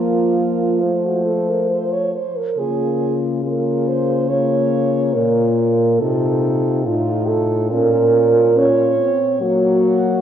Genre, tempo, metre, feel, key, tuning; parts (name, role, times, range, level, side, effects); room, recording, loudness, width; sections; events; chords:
classical, lyrical piece for horn quartet; 70 BPM; 4/4; rubato; Bb minor; A4 = 439 Hz
dark French horn; melody; 0.0-10.2 s; F4 to C5; -23 LUFS; left 6 dB
mellow French horn; second line; 0.0-10.2 s; F4 to Db5; -18 LUFS; right 5 dB
dark French horn; accompaniment; 0.0-10.2 s; A3 to Eb4; -22 LUFS; left 5 dB
mellow French horn; bass; 0.0-10.2 s; A2 to Gb3; -22 LUFS; equal
wet church reverb, RT60 3.2 s; worn, warbling old tape, cassette tape, warbly pitch drift, nothing above 7.5 kHz; -15 LUFS; side -9 dB against mid
0.0-10.2 A section
0.0 Fsus4; 0.8 F; 2.6 Bbm/Db; 6.0 F7/C; 7.7 Bbm; 9.4 Gb